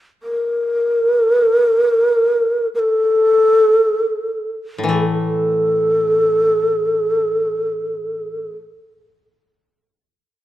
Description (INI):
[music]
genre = japanese traditional, Japanese chamber music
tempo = free time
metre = none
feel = none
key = unclear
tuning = A4 = 440 Hz
[part]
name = breathy mellow long shakuhachi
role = melody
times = 0.2-8.5 s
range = A4 to Bb4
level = -15 LUFS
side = equal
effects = none
[part]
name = koto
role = accompaniment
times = 4.8-8.5 s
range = A2 to A3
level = -22 LUFS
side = left 2 dB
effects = none
[sound]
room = moderate recital hall reverb, RT60 1.5 s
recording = dark, warm production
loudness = -14 LUFS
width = side -14 dB against mid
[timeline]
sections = 0.0-4.9 A section; 4.9-10.4 B section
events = slowing down 0.0-4.9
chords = none